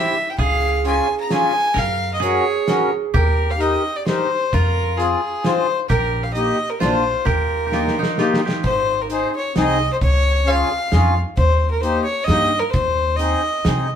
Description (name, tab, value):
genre	alpine folk, alpine dance band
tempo	131 BPM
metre	3/4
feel	swing 54% on 8ths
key	Eb major, Ab major from 8.6 s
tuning	A4 = 440 Hz
part	clear fiddle	melody	0.0-13.9 s	Ab4 to Bb5	-21 LUFS	left 1 dB	none
part	koto	second line	0.0-10.5 s	Eb4 to Bb4	-25 LUFS	right 5 dB	none
part	accordion	accompaniment	0.0-13.9 s	Bb3 to Bb4	-22 LUFS	left 2 dB	none
part	upright bass	bass	0.4-14.0 s	Ab1 to C3	-21 LUFS	equal	none
part	loose indie drum kit	drums	0.4-13.8 s	hi-hat, kick drum, snare drum	-24 LUFS	right 1 dB	none
room	moderate studio reverb, RT60 0.6 s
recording	band playing live in one room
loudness	-16 LUFS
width	side -8 dB against mid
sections	0.0-8.6 A section; 8.6-14.0 B section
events	drum fill 7.7-8.6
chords	0.4 Db; 1.8 Gb; 3.1 Eb; 4.5 Fm; 5.9 Eb/Bb; 6.8 Bb; 7.3 Eb; 8.6 Ab; 10.0 Db; 11.4 Eb; 12.7 Ab/Eb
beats	| 0.39 0.84 1.30 | 1.76 2.22 2.68 | 3.14 3.60 4.06 | 4.52 4.98 5.44 | 5.90 6.35 6.81 | 7.27 7.72 8.19 | 8.65 9.10 9.56 | 10.02 10.47 10.92 | 11.38 11.83 12.29 | 12.74 13.20 13.65